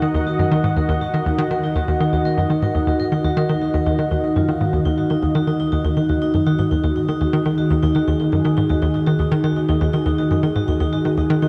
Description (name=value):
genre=ambient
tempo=121 BPM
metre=4/4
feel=straight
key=Eb minor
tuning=A4 = 439 Hz
part: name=sweeping resonant pad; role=sustained chords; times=0.0-11.5 s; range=Eb3 to Gb5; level=-25 LUFS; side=equal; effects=chorus
part: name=vibraphone with medium mallets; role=arpeggios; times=0.0-11.5 s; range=Eb4 to F5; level=-24 LUFS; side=equal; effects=low-pass filter, analog delay
part: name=hollow square pluck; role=riff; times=0.0-11.5 s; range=Eb2 to Eb3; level=-22 LUFS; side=equal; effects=chorus, analog delay
part: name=pulsing gated texture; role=texture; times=0.0-11.5 s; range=Eb5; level=-38 LUFS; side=equal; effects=chorus, built-in reverb
room=wet huge ambient reverb, RT60 8.3 s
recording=dark, warm production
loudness=-19 LUFS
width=mono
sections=0.0-11.5 A section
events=none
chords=0.0 Ebm